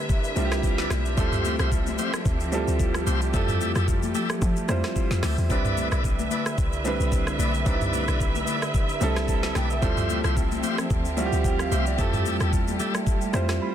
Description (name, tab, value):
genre	amapiano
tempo	111 BPM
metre	4/4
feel	swing 55% on 16ths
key	C major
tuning	A4 = 440 Hz
part	clear baby grand piano	accompaniment	0.0-13.7 s	G3 to B5	-29 LUFS	right 3 dB	none
part	dark studio string section	sustained chords	0.0-13.7 s	D3 to E5	-31 LUFS	right 1 dB	sidechain pumping
part	downlifter	sound effects	0.0-1.2 s	none	barely audible	none	none
part	smooth R&B drum kit	drums	0.1-13.6 s	hi-hat, kick drum, rim click, shaker, snare drum, toms	-27 LUFS	equal	soft clipping on snare
part	congas	percussion	0.1-13.5 s	none	-35 LUFS	left 10 dB	none
part	deep log drum bass	bass	0.4-13.6 s	B1 to F3	-27 LUFS	equal	none
part	bright tonewheel organ	stabs	0.8-12.9 s	E4 to E5	-32 LUFS	left 1 dB	overdrive, fast rotary speaker, ping-pong delay
room	little or no reverb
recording	dense, heavily limited modern master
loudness	-22 LUFS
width	side -10 dB against mid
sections	0.0-13.7 A section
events	none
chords	0.0 Cmaj9; 1.2 Dm11; 3.3 Fmaj9; 5.5 Cmaj9; 9.8 Dm11; 12.0 Fmaj9